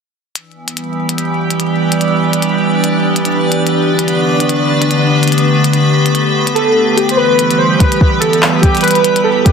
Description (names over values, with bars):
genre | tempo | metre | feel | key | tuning
IDM | 145 BPM | 4/4 | swing 56% on 16ths | E minor | A4 = 439 Hz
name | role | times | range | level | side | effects
icy glass pad | sustained chords | 0.7-9.5 s | D3 to B4 | -12 LUFS | right 1 dB | chorus, built-in reverb, sidechain pumping
glitchy drum kit | drums | 0.4-9.5 s | handclaps, hi-hat | -17 LUFS | left 2 dB | none
backwards swelling texture | texture | 1.5-7.0 s | D4 to D5 | -22 LUFS | equal | built-in reverb
warbly lo-fi synth keys | melody | 6.5-9.5 s | G4 to C5 | -12 LUFS | equal | chorus, phaser, vintage 12-bit sampler grit, tape echo
electronic kick drum | drums | 7.8-9.5 s | none | -10 LUFS | equal | none
room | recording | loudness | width
wet digital room reverb, RT60 1.2 s, digital ambience | dense, heavily limited modern master | -10 LUFS | side -6 dB against mid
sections
0.4-7.0 A section; 7.0-9.5 B section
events
none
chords
0.4 Em; 3.7 Gadd9; 7.0 Em